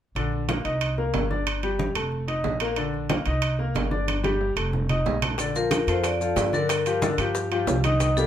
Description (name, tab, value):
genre	latin, salsa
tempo	184 BPM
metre	4/4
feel	straight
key	Bb major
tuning	A4 = 440 Hz
part	bright grand piano	accompaniment	0.2-8.3 s	D3 to Eb5	-27 LUFS	left 2 dB	none
part	upright bass	bass	0.2-8.3 s	F1 to G2	-28 LUFS	right 1 dB	none
part	congas	percussion	0.2-8.3 s	none	-30 LUFS	right 1 dB	none
part	timbales	percussion	0.2-8.2 s	none	-30 LUFS	right 6 dB	none
part	bongos	percussion	5.4-8.3 s	none	-33 LUFS	left 2 dB	none
part	maracas	percussion	5.4-8.3 s	none	-38 LUFS	left 3 dB	none
part	vibraphone with hard mallets	melody	5.6-8.3 s	A4 to D5	-26 LUFS	left 1 dB	none
room	wet studio reverb, RT60 0.5 s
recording	band playing live in one room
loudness	-22 LUFS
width	side -10 dB against mid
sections	0.2-5.4 A section; 5.4-8.3 B section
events	drum fill 4.1-5.4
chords	0.2 Bb; 0.8 Cm7; 1.5 G5; 2.1 F7; 2.8 Bb; 3.4 Cm7; 4.1 G5; 4.7 F7; 5.4 Bbmaj7; 6.7 Gm7